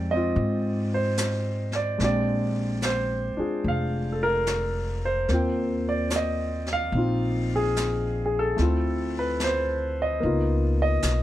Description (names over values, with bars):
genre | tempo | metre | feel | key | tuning
jazz ballad | 73 BPM | 4/4 | swing 67% on 8ths | unclear | A4 = 440 Hz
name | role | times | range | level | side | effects
warm concert grand piano | accompaniment | 0.0-11.2 s | Ab3 to G5 | -25 LUFS | equal | none
upright bass | bass | 0.0-11.2 s | F1 to Ab2 | -27 LUFS | left 1 dB | none
jazz brush drum kit | drums | 0.4-11.2 s | brushed snare drum, hi-hat, snare drum | -33 LUFS | left 1 dB | none
room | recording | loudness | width
light reverb | none | -23 LUFS | side -13 dB against mid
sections
0.0-11.2 A section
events
none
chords
0.0 Fm7; 2.0 Bb13; 5.3 Eb69; 8.6 Dm7; 10.2 Db13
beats
0.36 1.18 | 1.99 2.81 3.63 4.45 | 5.28 6.10 6.92 7.74 | 8.57 9.39 10.21 11.02